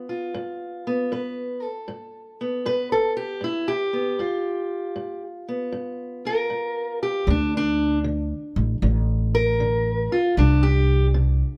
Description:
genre	acoustic country blues, solo or duo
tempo	78 BPM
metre	4/4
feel	swing 67% on 8ths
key	G mixolydian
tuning	A4 = 442 Hz
part	fingerpicked steel-string acoustic guitar	melody	0.0-11.6 s	G2 to B4	-26 LUFS	equal	plate reverb
part	upright bass	bass	7.3-11.4 s	A1 to D2	-23 LUFS	equal	none
room	light reverb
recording	none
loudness	-24 LUFS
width	mono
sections	0.0-11.6 A section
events	steel-string acoustic guitar solo 0.0-11.6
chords	0.0 G7; 7.3 D5; 10.4 C5

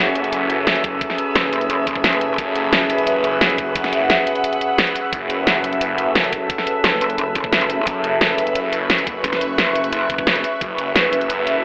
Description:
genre	dark technical drum and bass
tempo	175 BPM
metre	4/4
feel	straight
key	F# minor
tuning	A4 = 441 Hz
part	metallic inharmonic drone	sustained chords	0.0-11.6 s	F#3 to B4	-23 LUFS	equal	chorus, built-in reverb, sidechain pumping
part	phased detuned saw bass	bass	0.0-11.6 s	F#1	-24 LUFS	equal	phaser, overdrive
part	ethereal airy pad	texture	0.0-11.6 s	B4 to C#6	-22 LUFS	equal	ensemble chorus, built-in reverb, phaser, sidechain pumping
part	dubstep drum kit	drums	0.2-11.5 s	hi-hat, snare drum	-18 LUFS	equal	none
part	electronic kick drum	drums	0.8-10.7 s	none	-25 LUFS	equal	none
part	pulsing pluck wobble bass	bass	1.4-2.4, 6.8-10.4 s	F#1	-23 LUFS	equal	chorus
room	moderate lush hall reverb, RT60 1.6 s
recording	telephone sound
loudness	-16 LUFS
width	side -25 dB against mid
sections	0.0-11.6 A section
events	none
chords	0.0 F#madd9

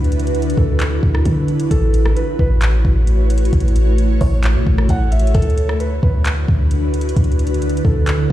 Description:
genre	hip hop, atmospheric cloud-rap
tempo	132 BPM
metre	4/4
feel	half-time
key	unclear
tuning	A4 = 440 Hz
part	ethereal airy pad	sustained chords	0.0-8.3 s	D3 to C#5	-21 LUFS	equal	ensemble chorus, built-in reverb, phaser, sidechain pumping
part	clean 808-style bass	bass	0.0-8.3 s	A1 to D3	-16 LUFS	equal	none
part	smooth R&B drum kit	drums	0.0-8.3 s	handclaps, hi-hat, kick drum, rim click	-19 LUFS	equal	none
part	felt-muted upright piano	melody	0.6-8.3 s	A4 to F#5	-27 LUFS	left 1 dB	tape echo
room	little or no reverb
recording	played on a big sound system in a bare room, large studio reverb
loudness	-14 LUFS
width	side -13 dB against mid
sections	0.0-8.3 A section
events	none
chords	0.0 D6; 1.7 A6; 5.3 D6

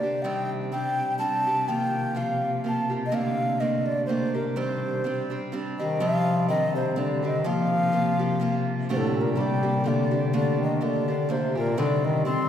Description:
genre	celtic folk, Celtic waltz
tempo	125 BPM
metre	3/4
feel	swing 55% on 8ths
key	C dorian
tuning	A4 = 439 Hz
part	breathy mellow wooden flute	melody	0.0-12.5 s	A4 to C6	-27 LUFS	equal	none
part	picked steel-string acoustic guitar	accompaniment	0.0-12.5 s	C3 to G4	-28 LUFS	right 3 dB	none
part	warm studio string section	drone	0.0-12.5 s	C3	-32 LUFS	left 3 dB	none
part	clear bass clarinet	second line	5.8-12.5 s	A2 to C4	-26 LUFS	left 3 dB	none
room	wet concert hall reverb, RT60 2.2 s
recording	recorded in a church or concert hall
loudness	-23 LUFS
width	side -9 dB against mid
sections	0.0-6.0 A section; 6.0-12.5 A section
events	none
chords	0.2 Cmadd9; 1.7 Ebadd9; 3.1 Gmadd9; 4.6 Cmadd9; 7.5 Ebadd9; 8.9 Gmadd9; 11.8 Cmadd9

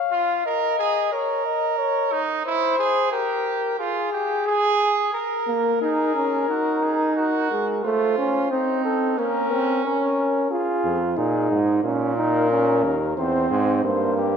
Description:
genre	classical, imitative canzona for brass ensemble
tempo	90 BPM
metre	4/4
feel	straight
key	Bb minor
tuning	A4 = 440 Hz
part	dark cornet	melody	0.0-14.4 s	G4 to F5	-24 LUFS	left 7 dB	none
part	clear trumpet	second line	0.1-10.5 s	Db4 to Bb4	-24 LUFS	right 7 dB	none
part	mellow trombone	accompaniment	5.5-14.4 s	Ab3 to F4	-22 LUFS	right 2 dB	none
part	clear bass trombone	bass	10.8-14.4 s	Eb2 to Bb2	-23 LUFS	right 3 dB	none
room	wet scoring stage reverb, RT60 2.1 s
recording	none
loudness	-20 LUFS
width	side -7 dB against mid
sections	0.0-5.1 A section; 5.1-14.4 B section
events	none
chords	0.0 Fm; 1.1 Bbmadd11; 2.5 C/E; 3.8 Fm; 5.1 Bbm; 6.5 Ebmadd11; 7.8 F/A; 9.2 Bbm; 10.5 Fm; 11.8 Bbmadd11; 13.2 C/E

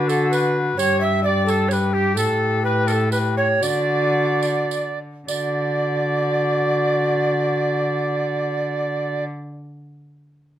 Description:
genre	classical, renaissance-style consort dance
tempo	101-131 BPM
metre	3/4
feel	straight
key	D major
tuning	A4 = 438 Hz
part	bright oboe	melody	0.0-9.2 s	G4 to E5	-27 LUFS	left 5 dB	none
part	tenor recorder	second line	0.0-9.2 s	G4 to E5	-22 LUFS	right 4 dB	none
part	warm trombone	accompaniment	0.0-9.2 s	F#4 to G4	-25 LUFS	left 3 dB	none
part	rich cello	bass	0.0-9.2 s	G2 to D3	-24 LUFS	equal	none
part	tambourine	percussion	0.1-5.6 s	none	-33 LUFS	right 8 dB	none
room	light reverb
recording	none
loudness	-18 LUFS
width	side -11 dB against mid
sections	0.0-5.3 A section; 5.3-8.9 B section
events	slowing down 1.5-5.3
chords	0.0 D; 0.8 G69; 2.2 Gadd9/A; 3.6 D

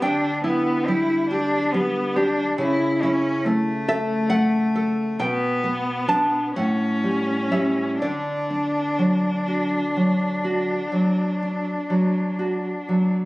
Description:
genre	romantic duo for cello and classical guitar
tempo	40-47 BPM (dotted quarters)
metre	12/8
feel	rubato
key	D major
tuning	A4 = 440 Hz
part	rich cello	melody	0.0-13.1 s	A3 to E4	-24 LUFS	left 1 dB	none
part	nylon-string guitar	accompaniment	0.0-13.3 s	A2 to A5	-22 LUFS	equal	none
room	light reverb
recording	recorded on a phone in the room, club reverb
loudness	-20 LUFS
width	side -19 dB against mid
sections	0.0-13.3 A section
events	none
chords	0.0 Em7/D; 2.6 A/C#; 5.2 G/B; 6.6 A7; 8.0 D

